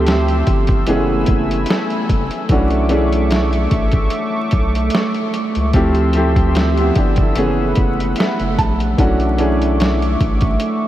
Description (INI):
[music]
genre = lo-fi hip hop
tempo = 74 BPM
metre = 4/4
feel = swing 56% on 16ths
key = B dorian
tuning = A4 = 440 Hz
[part]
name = bright upright piano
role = accompaniment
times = 0.0-10.9 s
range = E3 to A5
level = -19 LUFS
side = equal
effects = low-pass filter
[part]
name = warm analog pad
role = sustained chords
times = 0.0-10.9 s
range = A3 to E6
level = -21 LUFS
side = right 1 dB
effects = chorus, low-pass filter
[part]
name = round analog bass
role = bass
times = 0.0-10.6 s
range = F#1 to D2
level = -18 LUFS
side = equal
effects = none
[part]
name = lo-fi sampler-style drum kit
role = drums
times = 0.1-10.8 s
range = hi-hat, kick drum, snare drum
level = -19 LUFS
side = equal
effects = none
[sound]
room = moderate huge ambient reverb, RT60 6.7 s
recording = dreamy mix soaked in reverb, vinyl crackle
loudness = -14 LUFS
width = side -13 dB against mid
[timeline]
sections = 0.0-10.9 A section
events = upright piano fill 7.8-9.0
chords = 0.0 Dm11; 0.9 F#m11; 2.5 Bm11; 5.7 Dm11; 7.4 F#m11; 9.0 Bm11